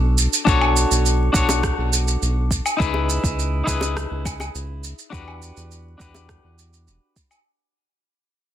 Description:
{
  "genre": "sunset chillout",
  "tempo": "103 BPM",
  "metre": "4/4",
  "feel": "straight",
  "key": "unclear",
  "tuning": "A4 = 441 Hz",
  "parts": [
    { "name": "semi-hollow electric guitar", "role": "accompaniment", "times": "0.0-7.4 s", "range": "D4 to C#5", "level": "-23 LUFS", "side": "moving between left 6 dB and right 1 dB", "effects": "auto-pan, low-pass filter, digital delay" },
    { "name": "round analog bass", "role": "bass", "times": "0.0-7.0 s", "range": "E1 to E2", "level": "-22 LUFS", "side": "equal", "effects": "none" },
    { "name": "electronic shaker, woodblock and rim click", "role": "drums", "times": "0.2-7.4 s", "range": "none", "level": "-24 LUFS", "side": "right 2 dB", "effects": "soft clipping on snare" },
    { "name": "electronic kick drum", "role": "drums", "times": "0.5-7.3 s", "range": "none", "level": "-22 LUFS", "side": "equal", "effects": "overdrive" },
    { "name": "bongos", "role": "percussion", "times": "1.5-6.3 s", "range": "none", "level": "-30 LUFS", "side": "equal", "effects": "none" }
  ],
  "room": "digital ambience",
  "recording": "dense, heavily limited modern master",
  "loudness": "-18 LUFS",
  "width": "side -11 dB against mid",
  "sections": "0.0-7.5 A section",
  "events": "fade-out 0.0-7.5",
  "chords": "0.0 Bm9; 2.8 C#m9; 5.1 Em9"
}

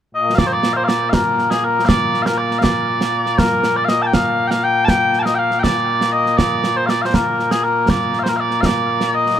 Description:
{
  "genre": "scottish traditional, Scottish pipe music",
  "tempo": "80 BPM (dotted quarters)",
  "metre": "6/8",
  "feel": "straight",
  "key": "Bb major",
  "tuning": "A4 = 440 Hz",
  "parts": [
    { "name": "mellow small bagpipes", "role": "melody", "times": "0.1-9.4 s", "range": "Bb2 to A5", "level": "-16 LUFS", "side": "left 1 dB", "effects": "tape echo" },
    { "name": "concert snare drum and concert bass drum", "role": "drums", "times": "0.4-9.3 s", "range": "none", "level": "-19 LUFS", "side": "right 2 dB", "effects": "none" }
  ],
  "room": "light reverb",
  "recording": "none",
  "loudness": "-14 LUFS",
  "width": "side -10 dB against mid",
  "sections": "0.4-9.4 A section",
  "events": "none",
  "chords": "none"
}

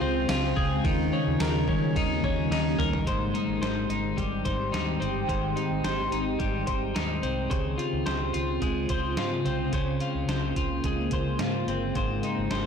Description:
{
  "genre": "dream pop",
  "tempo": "108 BPM",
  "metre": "4/4",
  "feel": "straight",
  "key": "Ab major",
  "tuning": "A4 = 440 Hz",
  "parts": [
    { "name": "shimmering ambient pad", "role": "sustained chords", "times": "0.0-12.7 s", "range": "Db3 to G4", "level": "-31 LUFS", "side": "right 1 dB", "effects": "chorus, built-in reverb, phaser" },
    { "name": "twelve-string electric guitar", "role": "arpeggios", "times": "0.0-12.7 s", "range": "Ab2 to C5", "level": "-29 LUFS", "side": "left 4 dB", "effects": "lush chorus, ping-pong delay" },
    { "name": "vintage muted fingered electric bass", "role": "bass", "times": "0.0-12.7 s", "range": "G1 to Eb3", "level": "-32 LUFS", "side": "right 1 dB", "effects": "tube saturation" },
    { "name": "detuned 8-bit digital drum machine", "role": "drums", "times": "0.3-12.6 s", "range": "hi-hat, kick drum, ride cymbal, snare drum, tambourine, toms", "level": "-32 LUFS", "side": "right 1 dB", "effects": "none" }
  ],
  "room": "light reverb",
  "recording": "blown-out, overdriven recording, overdrive",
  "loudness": "-25 LUFS",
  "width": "side -7 dB against mid",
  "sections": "0.0-3.1 A section; 3.1-12.7 B section",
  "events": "drum fill 2.5-3.1",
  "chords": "0.0 Dbmaj7; 0.8 Eb7; 3.1 Abmaj7; 7.5 Dbmaj7; 12.0 Abmaj7"
}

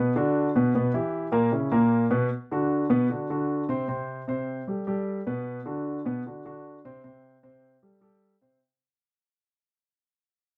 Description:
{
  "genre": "jazz",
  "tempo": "153 BPM",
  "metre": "4/4",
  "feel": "straight",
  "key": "unclear",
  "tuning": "A4 = 440 Hz",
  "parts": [
    { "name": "warm grand piano", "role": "solo", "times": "0.0-8.6 s", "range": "Bb2 to C5", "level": "-27 LUFS", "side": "equal", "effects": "none" }
  ],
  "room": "moderate club reverb, RT60 0.5 s",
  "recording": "none",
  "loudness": "-26 LUFS",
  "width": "mono",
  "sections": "0.0-2.3 A section; 2.3-8.6 B section",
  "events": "fade-out 2.3-8.6",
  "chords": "0.0 Bm; 0.7 Em; 1.5 A#dim; 2.3 Bm; 3.9 Am9; 5.5 Bm; 7.0 Am7/C"
}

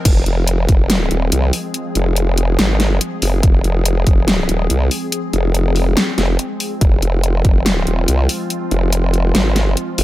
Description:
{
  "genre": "heavy wobble dubstep",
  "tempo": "142 BPM",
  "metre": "4/4",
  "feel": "half-time",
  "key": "F minor",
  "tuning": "A4 = 440 Hz",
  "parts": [
    { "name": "evolving wavetable pad", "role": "sustained chords", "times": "0.1-10.0 s", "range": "F3 to Ab4", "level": "-23 LUFS", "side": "left 1 dB", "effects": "ensemble chorus, built-in reverb, vintage 12-bit sampler grit, sidechain pumping" },
    { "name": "formant-sweep wobble bass", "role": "bass", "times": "0.1-10.0 s", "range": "Eb1 to C2", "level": "-16 LUFS", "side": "equal", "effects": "chorus, overdrive" },
    { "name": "dubstep drum kit", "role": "drums", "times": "0.1-10.0 s", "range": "crash cymbal, hi-hat, snare drum", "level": "-19 LUFS", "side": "left 1 dB", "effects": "none" },
    { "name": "electronic kick drum", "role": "drums", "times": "0.1-0.8, 3.4-4.2, 6.8-7.5 s", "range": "none", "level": "-13 LUFS", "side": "equal", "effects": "none" }
  ],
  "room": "digital ambience",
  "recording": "none",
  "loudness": "-14 LUFS",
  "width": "side -16 dB against mid",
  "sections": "0.1-10.0 A section",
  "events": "drop 0.1-10.0",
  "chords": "0.1 Fm"
}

